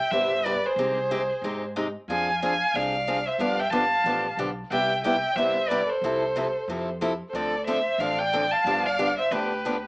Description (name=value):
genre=acoustic string swing (jazz manouche)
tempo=183 BPM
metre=4/4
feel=swing 59% on 8ths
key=C major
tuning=A4 = 440 Hz
part: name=warm violin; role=melody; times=0.0-9.8 s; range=B4 to A5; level=-25 LUFS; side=equal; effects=slapback echo
part: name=dark violin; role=second line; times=0.0-9.8 s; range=G4 to F5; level=-30 LUFS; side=right 1 dB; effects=none
part: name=picked steel-string acoustic guitar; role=accompaniment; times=0.1-9.8 s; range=C3 to A4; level=-28 LUFS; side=left 1 dB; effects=none
part: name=upright bass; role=bass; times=0.1-9.8 s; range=G1 to Ab2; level=-38 LUFS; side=equal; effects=none
room=moderate club reverb, RT60 0.6 s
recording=AM radio sound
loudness=-22 LUFS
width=side -26 dB against mid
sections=0.0-9.9 A section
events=none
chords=0.0 Cmaj7; 0.8 Abmaj7/C; 2.1 Fm6; 3.4 G9; 4.7 Cmaj7; 6.0 Fmaj7/C; 7.3 Dm7; 8.7 G7